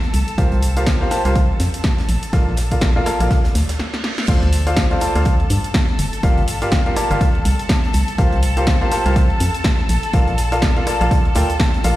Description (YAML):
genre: piano house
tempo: 123 BPM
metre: 4/4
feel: swing 58% on 16ths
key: unclear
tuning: A4 = 443 Hz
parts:
  - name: rich studio violin section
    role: sustained chords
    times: 0.0-12.0 s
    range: A4 to A5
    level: -27 LUFS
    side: left 1 dB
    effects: sidechain pumping
  - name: big rock drum kit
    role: drums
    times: 0.0-12.0 s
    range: hi-hat, snare drum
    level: -37 LUFS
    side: right 2 dB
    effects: none
  - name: organ-like FM bass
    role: bass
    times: 0.1-11.9 s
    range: G1 to G2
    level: -19 LUFS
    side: equal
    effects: sidechain pumping
  - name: punchy analog drum machine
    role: drums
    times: 0.1-12.0 s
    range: cabasa, crash cymbal, hi-hat, rim click, snare drum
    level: -25 LUFS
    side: equal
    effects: none
  - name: clear concert grand piano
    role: riff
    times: 0.4-12.0 s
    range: F4 to A5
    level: -23 LUFS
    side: equal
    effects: sidechain pumping, dub echo
  - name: electronic kick drum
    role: drums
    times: 0.4-11.7 s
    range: none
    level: -18 LUFS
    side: equal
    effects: none
  - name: reverse cymbal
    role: sound effects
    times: 3.6-4.3 s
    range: none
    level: -31 LUFS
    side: right 5 dB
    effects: none
room: light reverb, studio reverb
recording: played on a big sound system in a bare room, stone room reverb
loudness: -15 LUFS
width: side -15 dB against mid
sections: 0.0-4.3 A section; 4.3-12.0 B section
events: reverse cymbal 3.6-4.3; break 3.8-4.3; drum fill 3.8-4.3; drop 4.3-12.0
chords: 0.1 C7sus4; 2.1 Bbmaj7; 4.3 Dm7; 6.0 Gm7; 7.9 C7sus4; 9.9 Bbmaj7